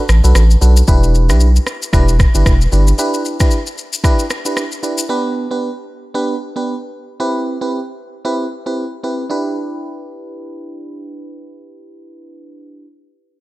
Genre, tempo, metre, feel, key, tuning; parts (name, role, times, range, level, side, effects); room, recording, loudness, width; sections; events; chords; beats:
afrobeats; 114 BPM; 4/4; swing 58% on 16ths; E minor; A4 = 441 Hz
FM electric piano; accompaniment; 0.0-12.9 s; B3 to B4; -20 LUFS; right 1 dB; chorus
saturated sub bass; bass; 0.1-2.9 s; E1 to B1; -10 LUFS; equal
afro-pop drum kit; drums; 0.1-5.1 s; kick drum, rim click, shaker; -16 LUFS; equal
light reverb; -13 LUFS; side -19 dB against mid
0.9-9.3 A section; 9.3-13.4 B section
0.0 Bm7; 0.9 Em7; 5.1 G; 7.2 Cmaj7; 9.3 Em7
0.35 | 0.88 1.41 1.93 2.46 | 2.98 3.51 4.04 4.56 | 5.09 5.62 6.14 6.67 | 7.20 7.72 8.25 8.78 | 9.30 9.83 10.35 10.88 | 11.41 11.93 12.46